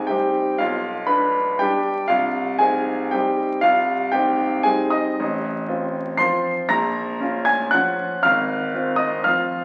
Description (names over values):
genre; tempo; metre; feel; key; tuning
classical, piano waltz; 118 BPM; 3/4; uneven beats, rubato; unclear; A4 = 440 Hz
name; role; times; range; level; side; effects
clear grand piano; solo; 0.0-9.6 s; Ab1 to C7; -21 LUFS; equal; none
room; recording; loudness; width
wet recital hall reverb, RT60 1.6 s; very old 78 rpm record, vinyl crackle; -21 LUFS; mono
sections
0.0-9.6 A section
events
none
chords
0.0 Cm; 0.6 G7/B; 2.1 Cm; 5.2 F7/A; 6.7 Bbm; 8.2 Fm/Ab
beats
0.09 | 0.59 1.09 1.60 | 2.10 2.59 3.11 | 3.63 4.12 4.66 | 5.19 5.68 6.20 | 6.70 7.21 7.73 | 8.24 8.75 9.27